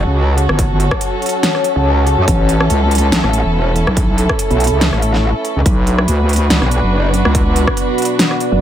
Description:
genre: heavy wobble dubstep.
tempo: 142 BPM.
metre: 4/4.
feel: swing 55% on 16ths, half-time.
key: unclear.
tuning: A4 = 439 Hz.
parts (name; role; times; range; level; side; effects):
dark chamber string section; sustained chords; 0.0-8.6 s; C#4 to B4; -20 LUFS; equal; vintage 12-bit sampler grit, sidechain pumping.
metallic wobble bass; bass; 0.0-8.6 s; E1 to F#2; -14 LUFS; equal; chorus, overdrive.
impact; sound effects; 0.0-0.6 s; none; barely audible; none; none.
deep dark ambient pad; texture; 0.0-8.6 s; B3 to C#6; -20 LUFS; equal; chorus, built-in reverb, sidechain pumping.
big-room dance drum kit; drums; 0.4-8.5 s; hi-hat, rim click, snare drum; -18 LUFS; equal; none.
wobble bass; bass; 0.5-7.7 s; G1 to D2; -14 LUFS; equal; chorus, overdrive.
electronic kick drum; drums; 0.6-7.8 s; none; -17 LUFS; equal; none.
room: light reverb, digital ambience.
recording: none.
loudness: -12 LUFS.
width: side -10 dB against mid.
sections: 0.0-8.6 A section.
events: impact 0.0-0.6.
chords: 0.0 F#m; 2.3 A; 5.7 Bm.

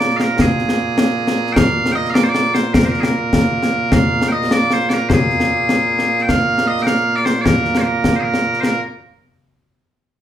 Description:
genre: scottish traditional, Scottish pipe music.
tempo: 102 BPM (dotted quarters).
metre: 6/8.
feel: straight.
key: Bb mixolydian.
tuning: A4 = 440 Hz.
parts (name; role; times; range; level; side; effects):
loud bright bagpipes; melody; 0.0-8.8 s; Bb2 to G5; -16 LUFS; right 2 dB; none.
concert snare drum and concert bass drum; drums; 0.0-8.8 s; none; -17 LUFS; left 1 dB; none.
room: wet large studio reverb, RT60 0.8 s.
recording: band playing live in one room.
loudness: -14 LUFS.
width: side -10 dB against mid.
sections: 0.0-8.6 A section; 8.6-9.8 B section.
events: none.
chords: none.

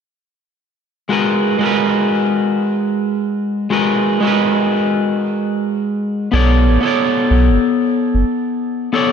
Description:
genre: sunset chillout.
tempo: 92 BPM.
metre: 4/4.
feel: swing 57% on 16ths.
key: G# minor.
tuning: A4 = 436 Hz.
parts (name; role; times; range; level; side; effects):
electric guitar at the edge of break-up; accompaniment; 1.1-9.1 s; G#3 to D5; -14 LUFS; moving between left 4 dB and right 5 dB; auto-pan, ping-pong delay.
warm sub bass; bass; 6.3-8.2 s; F#1 to B1; -12 LUFS; right 1 dB; none.
room: moderate lush hall reverb, RT60 2.0 s.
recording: dark, warm production.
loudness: -14 LUFS.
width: side -7 dB against mid.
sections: 1.1-9.1 A section.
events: none.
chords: 1.1 G#m9; 6.3 Bm9.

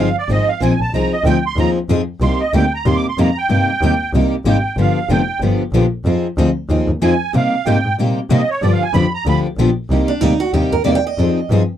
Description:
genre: acoustic string swing (jazz manouche).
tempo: 187 BPM.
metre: 4/4.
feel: swing 60% on 8ths.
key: C minor.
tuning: A4 = 440 Hz.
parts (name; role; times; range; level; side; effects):
musette accordion; melody; 0.0-9.4 s; Db5 to D6; -20 LUFS; right 5 dB; none.
picked steel-string acoustic guitar; accompaniment; 0.0-11.6 s; C3 to Ab4; -19 LUFS; left 5 dB; none.
picked steel-string acoustic guitar; accompaniment; 0.0-11.6 s; C3 to Ab4; -22 LUFS; right 7 dB; none.
rich double bass; bass; 0.0-11.6 s; F1 to C3; -18 LUFS; equal; none.
picked steel-string acoustic guitar; second line; 10.1-11.5 s; D4 to G5; -19 LUFS; right 6 dB; none.
room: light reverb.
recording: dry, close 1970s-style studio recording.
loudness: -14 LUFS.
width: side -10 dB against mid.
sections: 0.0-9.9 A section; 9.9-11.8 A section.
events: accordion solo 0.0-9.9; steel-string acoustic guitar solo 9.9-11.8.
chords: 0.0 Fm7; 2.2 Cm7; 4.8 G7; 6.1 Fm7; 7.3 Cm7; 8.6 G7; 9.9 Cm7; 11.2 Fm7.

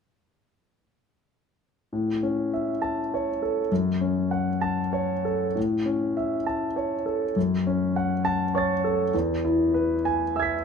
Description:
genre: neoclassical minimalist piano.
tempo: 67 BPM (dotted quarters).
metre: 6/8.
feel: rubato.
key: A major.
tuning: A4 = 440 Hz.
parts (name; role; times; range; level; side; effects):
clear grand piano; solo; 1.9-10.6 s; E2 to B6; -23 LUFS; left 1 dB; none.
room: wet studio reverb, RT60 0.7 s.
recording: minimal, uncompressed stereo recording, lossy compression artefacts.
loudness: -23 LUFS.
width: side -6 dB against mid.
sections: 1.9-5.6 A section; 5.6-10.6 B section.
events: none.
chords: 1.9 A; 3.7 F#m; 5.6 A; 7.4 F#m; 9.1 E.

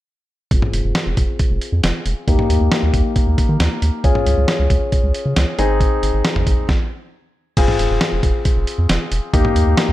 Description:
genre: synth-pop.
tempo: 136 BPM.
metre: 4/4.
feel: straight.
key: F minor.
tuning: A4 = 439 Hz.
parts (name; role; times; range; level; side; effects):
warm concert grand piano; accompaniment; 0.5-9.9 s; Bb3 to Ab4; -21 LUFS; left 3 dB; low-pass filter.
rubbery square bass; bass; 0.5-9.9 s; F1 to Eb3; -17 LUFS; equal; none.
dusty soul sampler-style drum kit; drums; 0.5-9.9 s; crash cymbal, hi-hat, kick drum, snare drum, toms; -18 LUFS; equal; none.
room: light reverb.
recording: none.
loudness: -15 LUFS.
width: side -15 dB against mid.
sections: 0.5-7.6 A section; 7.6-9.9 B section.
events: filter sweep on grand piano 0.5-7.6; stop 6.7-7.6.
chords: 0.5 Fm; 2.3 Eb; 4.0 Db; 5.6 Ab; 7.6 Fm; 9.3 Eb.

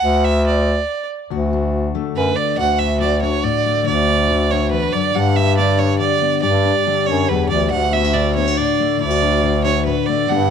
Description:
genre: indie folk with a building arrangement.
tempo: 140 BPM.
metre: 3/4.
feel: straight.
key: D major.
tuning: A4 = 440 Hz.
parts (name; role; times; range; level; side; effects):
rich fiddle; melody; 0.0-10.5 s; B4 to F#5; -18 LUFS; right 7 dB; none.
warm bass clarinet; bass; 0.0-10.5 s; D2 to G2; -18 LUFS; left 1 dB; none.
fingerpicked steel-string acoustic guitar; accompaniment; 1.3-10.5 s; D2 to G4; -20 LUFS; left 11 dB; none.
room: light reverb.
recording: 1960s-style stereo with parts hard left and right.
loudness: -15 LUFS.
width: side -7 dB against mid.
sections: 0.0-1.3 A section; 1.3-2.6 B section; 2.6-10.5 C section.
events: none.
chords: 0.0 N.C.; 1.3 D; 5.2 G5; 7.7 D.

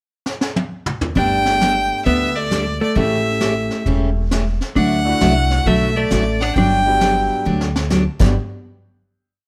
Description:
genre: country, western swing.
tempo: 133 BPM.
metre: 4/4.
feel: swing 66% on 8ths.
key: G major.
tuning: A4 = 440 Hz.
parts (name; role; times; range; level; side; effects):
vintage brush drum kit; drums; 0.3-8.3 s; brushed snare drum, crash cymbal, hi-hat, kick drum, snare drum, toms; -25 LUFS; equal; none.
clear upright piano; accompaniment; 1.1-8.3 s; F#3 to G4; -29 LUFS; equal; none.
rich fiddle; melody; 1.2-7.4 s; D5 to G5; -22 LUFS; equal; none.
hollow-body jazz guitar; second line; 1.2-7.4 s; A3 to D4; -24 LUFS; equal; none.
picked steel-string acoustic guitar; accompaniment; 1.2-8.3 s; G2 to A4; -23 LUFS; equal; none.
upright bass; bass; 1.2-8.3 s; E1 to D2; -23 LUFS; equal; none.
room: light reverb.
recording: none.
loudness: -18 LUFS.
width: mono.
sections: 0.0-1.2 pickup bar; 1.2-8.4 A section; 8.4-9.5 final hit.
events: drum fill 0.3-1.2, 7.5-7.9.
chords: 0.0 N.C.; 1.2 Gadd9; 3.0 A7; 4.8 Dadd9; 6.6 Gmaj7; 8.4 N.C..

